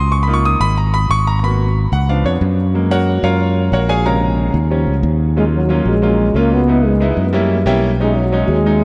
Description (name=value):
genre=jazz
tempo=183 BPM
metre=4/4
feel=straight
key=Eb minor from 5.4 s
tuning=A4 = 440 Hz
part: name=clear baby grand piano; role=accompaniment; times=0.0-8.8 s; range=B#2 to D#6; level=-20 LUFS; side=equal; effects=none
part: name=fingered electric bass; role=bass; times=0.0-8.8 s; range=G#1 to F#2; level=-18 LUFS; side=equal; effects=none
part: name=breathy trombone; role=melody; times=5.4-8.8 s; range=Gb3 to Cb4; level=-18 LUFS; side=equal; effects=delay
room=wet cathedral reverb, RT60 5.6 s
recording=dreamy mix soaked in reverb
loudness=-15 LUFS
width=mono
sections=0.0-5.4 A section; 5.4-8.8 B section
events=grand piano solo 0.0-5.4; grand piano fill 7.3-8.0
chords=0.1 C#6; 1.4 G#m7; 2.1 C#7b9; 2.7 F#maj9; 4.1 A#m7; 4.7 D#7; 5.4 Ebm9; 6.7 Dbm9; 7.3 Gb7b9; 8.0 B6